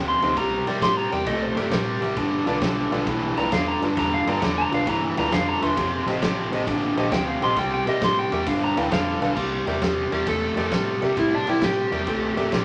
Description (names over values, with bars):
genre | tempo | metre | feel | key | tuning
electric blues shuffle | 133 BPM | 4/4 | swing 67% on 8ths | C mixolydian | A4 = 438 Hz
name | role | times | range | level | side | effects
electric guitar through a small old amp | second line | 0.0-9.4 s | Bb4 to C6 | -28 LUFS | equal | none
biting overdriven guitar | riff | 0.0-12.6 s | F2 to A3 | -26 LUFS | equal | none
vintage muted fingered electric bass | bass | 0.0-12.6 s | E1 to C3 | -36 LUFS | equal | none
warm grand piano | accompaniment | 0.2-12.4 s | Eb4 to G5 | -33 LUFS | equal | none
raw garage drum kit | drums | 0.2-12.6 s | crash cymbal, kick drum, ride cymbal, snare drum | -31 LUFS | equal | none
overdriven slide guitar | melody | 10.1-12.6 s | D4 to A4 | -28 LUFS | equal | none
room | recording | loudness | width
moderate large studio reverb, RT60 0.9 s | none | -23 LUFS | mono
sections
0.0-9.4 A section; 9.4-12.6 B section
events
clean electric guitar solo 0.0-9.4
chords
0.4 C7; 2.2 G7; 5.8 F7; 7.6 C7; 8.5 G7; 9.4 C7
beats
| 0.37 0.82 1.27 1.72 | 2.17 2.62 3.07 3.52 | 3.97 4.42 4.87 5.32 | 5.77 6.22 6.67 7.12 | 7.57 8.02 8.47 8.92 | 9.37 9.82 10.27 10.72 | 11.17 11.62 12.07 12.52